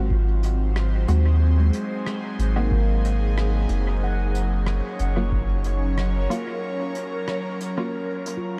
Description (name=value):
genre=ambient dub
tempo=92 BPM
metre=4/4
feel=straight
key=Ab mixolydian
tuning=A4 = 440 Hz
part: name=airy breathy pad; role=sustained chords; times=0.0-8.6 s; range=Gb3 to Db5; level=-32 LUFS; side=equal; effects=chorus, phaser
part: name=handpan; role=arpeggios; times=0.0-8.6 s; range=Ab3 to Gb5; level=-35 LUFS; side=equal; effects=tape echo
part: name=filtered dub chord stab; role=stabs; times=0.0-8.0 s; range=Gb3 to Gb4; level=-36 LUFS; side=equal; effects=chorus, cassette tape, dub echo
part: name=soft dub sub bass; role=bass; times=0.0-6.3 s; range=Gb1 to Eb2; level=-23 LUFS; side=equal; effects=none
part: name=electronic kick drum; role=drums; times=0.1-5.5 s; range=none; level=-28 LUFS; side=equal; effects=none
part: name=soft brush drum kit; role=drums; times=0.4-8.4 s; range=hi-hat, rim click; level=-41 LUFS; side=equal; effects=dub echo
room=light reverb, small room ambience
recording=none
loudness=-23 LUFS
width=mono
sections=0.0-8.6 A section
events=break 6.6-8.6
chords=0.0 Ab7; 4.0 Gbmaj7